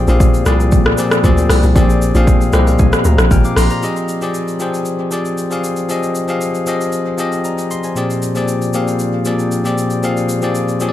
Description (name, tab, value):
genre	amapiano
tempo	116 BPM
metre	4/4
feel	straight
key	F dorian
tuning	A4 = 440 Hz
part	bell-like tine electric piano	accompaniment	0.0-10.9 s	Bb2 to F6	-16 LUFS	left 2 dB	analog delay
part	hollow log drum bass	bass	0.0-3.7 s	Ab1 to D2	-13 LUFS	equal	none
part	deep house drum kit	drums	0.1-10.9 s	hi-hat, kick drum, rim click, shaker	-17 LUFS	equal	overdrive
room	light reverb, digital ambience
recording	echo-heavy mix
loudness	-13 LUFS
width	side -12 dB against mid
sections	0.0-3.8 A section; 3.8-10.9 B section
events	drop 0.0-3.8; tine electric piano fill 2.3-3.8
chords	0.0 Bb13; 3.8 Fm7; 8.0 Bb13